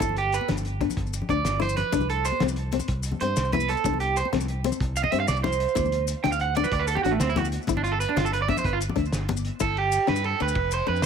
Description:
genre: highlife guitar band.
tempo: 125 BPM (dotted quarters).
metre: 12/8.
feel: straight.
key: unclear.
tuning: A4 = 439 Hz.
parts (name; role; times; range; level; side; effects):
flamenco guitar; accompaniment; 0.0-11.0 s; C4 to E4; -30 LUFS; left 14 dB; none.
electric guitar at the edge of break-up; arpeggios; 0.0-11.1 s; A3 to G5; -26 LUFS; right 7 dB; tape echo, plate reverb.
fingered electric bass; bass; 0.0-11.0 s; F1 to G2; -29 LUFS; equal; none.
cloth-damped thuddy drum kit; drums; 0.0-11.1 s; hi-hat, kick drum, ride cymbal, snare drum; -32 LUFS; equal; none.
congas; percussion; 0.0-9.5 s; none; -33 LUFS; left 6 dB; none.
maracas; percussion; 0.0-11.1 s; none; -37 LUFS; left 13 dB; none.
room: light reverb.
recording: none.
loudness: -22 LUFS.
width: side -7 dB against mid.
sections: 0.0-9.6 A section; 9.6-11.1 B section.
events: clean electric guitar solo 0.0-9.6; drum fill 1.5-1.9.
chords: 0.0 G5; 1.9 N.C.; 5.8 D5; 7.7 G5; 9.6 G; 10.6 F5.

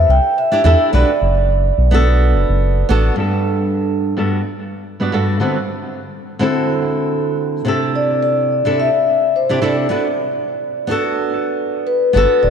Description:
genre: sunset chillout.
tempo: 107 BPM.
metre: 4/4.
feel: swing 55% on 16ths.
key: G major.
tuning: A4 = 440 Hz.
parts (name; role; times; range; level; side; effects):
vibraphone with soft mallets; melody; 0.0-2.9, 8.0-12.5 s; B4 to G5; -16 LUFS; left 1 dB; ping-pong delay.
round analog bass; bass; 0.0-3.1, 12.2-12.5 s; D1 to E2; -14 LUFS; equal; none.
flamenco guitar; accompaniment; 0.5-12.5 s; G2 to D5; -18 LUFS; right 1 dB; auto-pan, low-pass filter, analog delay.
room: moderate plate reverb, RT60 3.1 s.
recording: dreamy mix soaked in reverb.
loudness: -14 LUFS.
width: side -7 dB against mid.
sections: 0.0-3.2 A section; 3.2-12.2 B section.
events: filter sweep on nylon-string guitar 3.2-12.2.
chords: 0.0 C6; 0.9 Bm7; 3.2 Gmaj7; 5.4 D13; 7.7 C6; 9.9 Bm7.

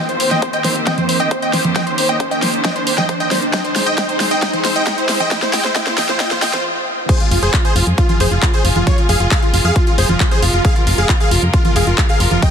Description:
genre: uplifting trance.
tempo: 135 BPM.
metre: 4/4.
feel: straight.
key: F minor.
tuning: A4 = 440 Hz.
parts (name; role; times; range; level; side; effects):
supersaw stab; melody; 0.0-12.5 s; F4 to G5; -18 LUFS; equal; cassette tape, sidechain pumping, low-pass filter, dub echo.
clear studio string section; sustained chords; 0.0-12.5 s; C3 to C5; -24 LUFS; left 2 dB; sidechain pumping.
riser; sound effects; 0.0-6.6 s; none; -24 LUFS; equal; none.
big-room dance drum kit; drums; 0.1-12.5 s; congas, crash cymbal, handclaps, hi-hat, snare drum; -20 LUFS; right 1 dB; overdrive, small room ambience.
electronic kick drum; drums; 0.4-12.5 s; none; -15 LUFS; equal; overdrive, high-pass filter on kick, small room ambience.
solid FM bass; bass; 7.3-12.4 s; F1 to F2; -16 LUFS; equal; sidechain pumping.
room: light reverb.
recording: dense, heavily limited modern master, high-pass filter.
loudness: -13 LUFS.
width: side -7 dB against mid.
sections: 0.0-7.1 A section; 7.1-12.5 B section.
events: build-up 0.0-7.1; drum fill 0.0-6.6; riser 0.0-6.6; filter sweep on supersaw synth 0.0-7.1; stop 6.6-7.1; drop 7.1-12.5.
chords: 0.0 Cm7; 3.5 Ab; 7.1 Fm.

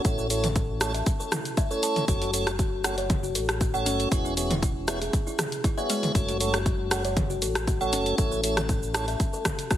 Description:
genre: afro house.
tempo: 118 BPM.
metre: 4/4.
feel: straight.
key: F# minor.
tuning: A4 = 444 Hz.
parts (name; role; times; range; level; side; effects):
kalimba; arpeggios; 0.0-9.8 s; G#3 to A5; -31 LUFS; left 2 dB; sidechain pumping, ping-pong delay.
tonewheel organ; stabs; 0.0-9.1 s; A3 to C#5; -30 LUFS; right 3 dB; slow rotary speaker, sidechain pumping, ping-pong delay.
round analog bass; bass; 0.0-9.8 s; E1 to A1; -32 LUFS; equal; sidechain pumping.
electronic kick drum; drums; 0.0-9.8 s; none; -26 LUFS; equal; none.
house drum kit; drums; 0.0-9.8 s; cabasa, hi-hat, rim click, toms; -29 LUFS; equal; none.
room: light reverb.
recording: heavily compressed radio sound, multiband compression.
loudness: -24 LUFS.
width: side -12 dB against mid.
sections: 0.0-9.8 A section.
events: none.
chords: 0.0 A; 2.1 F#m; 4.1 E6; 6.1 F#m; 8.2 A.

